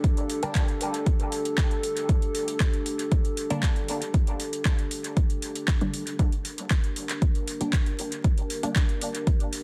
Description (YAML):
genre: dub techno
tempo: 117 BPM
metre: 4/4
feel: straight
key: G minor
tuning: A4 = 440 Hz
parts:
  - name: dark analog pad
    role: sustained chords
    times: 0.0-9.6 s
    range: D4 to Bb4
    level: -35 LUFS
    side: equal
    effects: lush chorus, sidechain pumping
  - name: deep house drum kit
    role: drums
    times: 0.0-9.6 s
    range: handclaps, hi-hat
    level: -36 LUFS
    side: equal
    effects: overdrive, dub echo
  - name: electronic kick drum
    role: drums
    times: 0.0-9.4 s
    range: none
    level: -26 LUFS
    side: equal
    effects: overdrive
  - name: filtered dub chord stab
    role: stabs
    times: 0.4-8.9 s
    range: D3 to D4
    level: -36 LUFS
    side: equal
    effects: phaser, sidechain pumping, dub echo
room: little or no reverb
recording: dense, heavily limited modern master, vinyl crackle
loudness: -26 LUFS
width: mono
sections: 0.0-6.2 A section; 6.2-9.6 A section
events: none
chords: 0.0 G5; 6.2 Gm